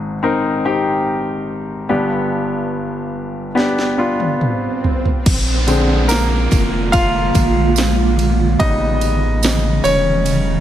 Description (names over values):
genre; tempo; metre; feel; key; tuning
pop ballad; 72 BPM; 4/4; straight; unclear; A4 = 440 Hz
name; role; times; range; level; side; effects
clear concert grand piano; accompaniment; 0.0-10.6 s; G1 to F5; -18 LUFS; left 1 dB; none
swell and downlifter; sound effects; 4.4-10.6 s; none; -27 LUFS; right 3 dB; none
house drum kit; drums; 3.6-10.4 s; crash cymbal, kick drum, ride cymbal, snare drum, toms; -19 LUFS; equal; none
granular cloud pad; sustained chords; 6.0-10.6 s; C#3 to F4; -20 LUFS; right 3 dB; built-in reverb
warm sub bass; bass; 5.3-10.6 s; E1 to Bb1; -18 LUFS; equal; none
tambourine; percussion; 5.7-10.4 s; none; -30 LUFS; right 15 dB; none
room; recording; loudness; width
light reverb, digital ambience; none; -14 LUFS; side -11 dB against mid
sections
0.0-5.3 A section; 5.3-10.6 B section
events
drum fill 3.6-5.3; swell 4.4-5.3; grand piano solo 5.3-10.6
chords
0.0 Ab; 1.9 G; 5.3 Bb7; 8.6 A7